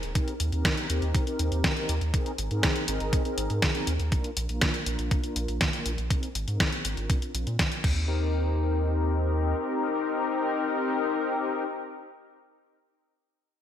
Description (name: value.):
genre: italo disco.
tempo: 121 BPM.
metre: 4/4.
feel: straight.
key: Eb major.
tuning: A4 = 440 Hz.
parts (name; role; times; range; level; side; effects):
round analog bass; bass; 0.0-9.5 s; Eb1 to Bb2; -28 LUFS; equal; none.
detuned 8-bit digital drum machine; drums; 0.0-7.9 s; crash cymbal, hi-hat, snare drum; -29 LUFS; equal; none.
mellow synth brass; stabs; 0.2-11.7 s; Bb3 to Bb4; -30 LUFS; left 2 dB; chorus, digital delay.
electronic kick drum; drums; 0.2-7.9 s; none; -27 LUFS; equal; none.
room: moderate lush hall reverb, RT60 1.7 s.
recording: bright 1980s-style digital production.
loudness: -25 LUFS.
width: side -10 dB against mid.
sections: 0.0-8.1 A section; 8.1-12.1 B section.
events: filter sweep on analog polysynth 0.0-8.1.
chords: 0.2 Eb6; 2.1 Abadd9; 4.1 Bb; 6.1 Abadd9; 7.1 Bbadd9; 7.8 Eb6.